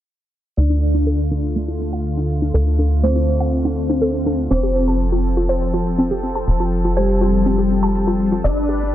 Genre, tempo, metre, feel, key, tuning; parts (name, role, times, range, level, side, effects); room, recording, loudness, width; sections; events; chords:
melodic techno; 122 BPM; 4/4; straight; D minor; A4 = 440 Hz
expressive portamento lead; melody; 0.6-8.9 s; G3 to D4; -21 LUFS; left 2 dB; ensemble chorus, tape echo
dark detuned synth bell; second line; 0.6-8.9 s; G4 to D5; -27 LUFS; right 2 dB; chorus, phaser, analog delay
lush unison pad; sustained chords; 0.6-8.9 s; D3 to B4; -25 LUFS; equal; chorus
tight sequencer bass; bass; 0.6-8.9 s; F1 to D2; -19 LUFS; equal
shaker; drums; 0.6-8.9 s; -58 LUFS; right 3 dB
warbly dusty pluck; arpeggios; 0.7-8.8 s; A3 to A5; -23 LUFS; equal; chorus, analog delay
moderate spring reverb, RT60 1.0 s, digital ambience; echo-heavy mix, low-pass filter; -16 LUFS; side -12 dB against mid
0.6-8.9 A section
filter sweep 0.6-8.9
0.6 Dm; 4.5 F; 8.4 G